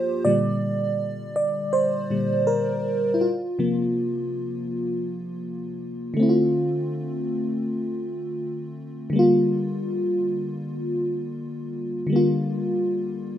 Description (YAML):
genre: R&B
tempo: 81 BPM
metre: 4/4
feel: swing 54% on 16ths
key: D minor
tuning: A4 = 444 Hz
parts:
  - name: FM electric piano with soft pad layer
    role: solo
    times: 0.0-13.4 s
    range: G2 to D5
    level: -22 LUFS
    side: equal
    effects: chorus
room: moderate small room reverb, RT60 0.5 s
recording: rough home demo mix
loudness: -22 LUFS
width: side -11 dB against mid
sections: 0.0-6.2 A section; 6.2-13.4 B section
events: FM electric piano solo 0.0-6.2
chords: 0.3 Bb6; 3.2 C7sus4; 6.2 Dm7; 9.1 Gm7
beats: | 0.26 1.00 1.74 2.48 | 3.22 3.96 4.70 5.44 | 6.18 6.92 7.66 8.40 | 9.14 9.88 10.62 11.37 | 12.11 12.85